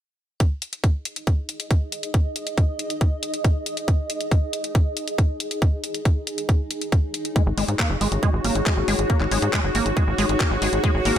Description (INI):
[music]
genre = psychedelic trance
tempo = 138 BPM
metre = 4/4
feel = straight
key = unclear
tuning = A4 = 438 Hz
[part]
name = electronic kick drum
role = drums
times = 0.4-10.9 s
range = none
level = -19 LUFS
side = equal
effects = none
[part]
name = garage drum kit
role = drums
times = 0.4-11.2 s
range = handclaps, hi-hat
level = -28 LUFS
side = left 2 dB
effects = none
[part]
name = granular cloud pad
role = texture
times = 1.2-11.2 s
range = D#4 to D#5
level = -29 LUFS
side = equal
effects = built-in reverb, sidechain pumping
[part]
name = evolving wavetable pad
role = sustained chords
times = 7.8-11.2 s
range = F#4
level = -27 LUFS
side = left 1 dB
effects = ensemble chorus, built-in reverb, sidechain pumping
[part]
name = liquid acid bass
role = riff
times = 7.4-11.2 s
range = G#3 to A#3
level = -26 LUFS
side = moving between left 5 dB and right 4 dB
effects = chorus, auto-pan, sidechain pumping, tape echo
[part]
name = tight sequencer bass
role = bass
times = 7.5-11.2 s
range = F#1 to G#2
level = -24 LUFS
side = equal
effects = none
[sound]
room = light reverb, digital ambience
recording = none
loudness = -20 LUFS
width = side -10 dB against mid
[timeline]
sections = 0.4-11.2 A section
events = none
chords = 0.4 G#5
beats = | 0.40 0.84 1.27 1.71 | 2.14 2.58 3.01 3.44 | 3.88 4.32 4.75 5.18 | 5.62 6.05 6.49 6.92 | 7.36 7.79 8.23 8.66 | 9.10 9.53 9.97 10.40 | 10.84